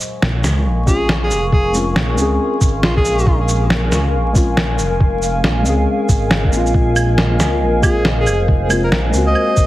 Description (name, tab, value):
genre	future garage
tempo	138 BPM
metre	4/4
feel	swing 63% on 16ths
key	Bb minor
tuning	A4 = 440 Hz
part	warbly tape-like pad	sustained chords	0.0-9.7 s	Bb4 to Db6	-22 LUFS	left 1 dB	chorus, built-in reverb, sidechain pumping
part	electronic shaker, snare drum and claves	drums	0.0-9.7 s	none	-19 LUFS	equal	none
part	drifting glass-harmonics texture	texture	0.0-9.7 s	Ab3 to Ab4	-30 LUFS	right 4 dB	chorus, built-in reverb
part	dark detuned saw bass	bass	0.2-9.7 s	F1 to Db2	-18 LUFS	equal	sidechain pumping
part	clear alto saxophone	melody	0.9-3.4, 7.8-9.7 s	F4 to Eb5	-21 LUFS	equal	digital delay
part	muted felt-like synth keys	accompaniment	0.9-9.7 s	Ab3 to Ab4	-22 LUFS	left 2 dB	chorus, sidechain pumping, dub echo
part	electronic kick drum	drums	0.9-9.7 s	none	-15 LUFS	equal	none
room	light reverb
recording	heavily compressed radio sound, vinyl crackle, faint mains hum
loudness	-13 LUFS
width	side -15 dB against mid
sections	0.0-9.7 A section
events	none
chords	0.0 Bbm7; 6.7 Gbmaj9#11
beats	0.22 0.66 1.09 | 1.53 1.96 2.40 2.83 | 3.27 3.70 4.14 4.57 | 5.00 5.44 5.88 6.31 | 6.74 7.18 7.61 8.05 | 8.48 8.92 9.35